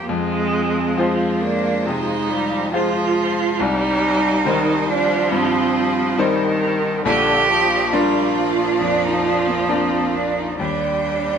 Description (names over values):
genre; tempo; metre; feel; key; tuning
neoclassical piano and strings; 69 BPM; 4/4; rubato; F dorian; A4 = 440 Hz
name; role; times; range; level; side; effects
rich cello; second line; 0.0-11.4 s; Bb3 to G4; -20 LUFS; right 4 dB; none
bright concert grand piano; accompaniment; 0.0-11.4 s; Bb1 to F5; -22 LUFS; left 4 dB; none
rich viola; accompaniment; 0.0-11.4 s; D3 to Bb3; -22 LUFS; right 2 dB; none
warm symphonic string section; sustained chords; 0.0-11.4 s; F3 to G5; -29 LUFS; left 2 dB; none
room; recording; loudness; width
wet studio ambience, RT60 0.5 s; band playing live in one room; -16 LUFS; side -7 dB against mid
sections
0.1-11.4 A section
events
none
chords
0.1 Fm; 3.6 Cm; 7.1 Bb; 10.6 Eb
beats
| 0.09 0.97 1.85 2.73 | 3.60 4.46 5.32 6.18 | 7.05 7.93 8.80 9.69 | 10.58